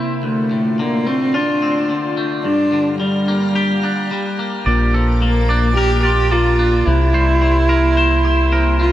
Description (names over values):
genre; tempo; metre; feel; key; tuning
post-rock; 109 BPM; 4/4; straight; D minor; A4 = 443 Hz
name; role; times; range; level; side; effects
soft additive organ-like pad; sustained chords; 0.0-8.9 s; C3 to D6; -27 LUFS; right 1 dB; ensemble chorus, built-in reverb
twangy electric guitar; arpeggios; 0.0-8.9 s; D2 to C5; -21 LUFS; left 2 dB; analog delay
dark cello; melody; 0.2-8.9 s; G3 to G4; -18 LUFS; equal; analog delay
twangy electric guitar; arpeggios; 4.7-8.9 s; A4 to D5; -23 LUFS; right 2 dB; analog delay
growling fingered electric bass; bass; 4.7-8.9 s; Bb1 to C2; -16 LUFS; equal; overdrive
room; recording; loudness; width
light reverb, digital ambience; none; -14 LUFS; side -13 dB against mid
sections
0.2-8.9 A section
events
none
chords
0.2 Dm7; 2.4 Gm7; 4.7 Bbmaj7; 6.9 C7